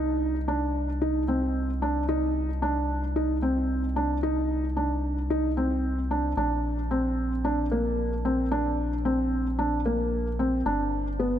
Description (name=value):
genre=piano and strings electronica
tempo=112 BPM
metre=4/4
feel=straight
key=C minor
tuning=A4 = 440 Hz
part: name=felt-muted upright piano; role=riff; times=0.0-11.4 s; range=Bb3 to Eb4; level=-26 LUFS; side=equal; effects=digital delay
part: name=round analog bass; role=bass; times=0.0-11.4 s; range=G1 to C2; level=-30 LUFS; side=equal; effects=none
room=moderate lush hall reverb, RT60 2.9 s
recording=none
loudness=-24 LUFS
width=side -10 dB against mid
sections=0.0-11.4 A section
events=none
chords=0.0 Cmadd9; 6.4 Bb; 10.7 G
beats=0.48 1.02 1.55 | 2.09 2.62 3.16 3.70 | 4.23 4.77 5.30 5.84 | 6.37 6.91 7.45 7.98 | 8.52 9.05 9.59 10.12 | 10.66 11.20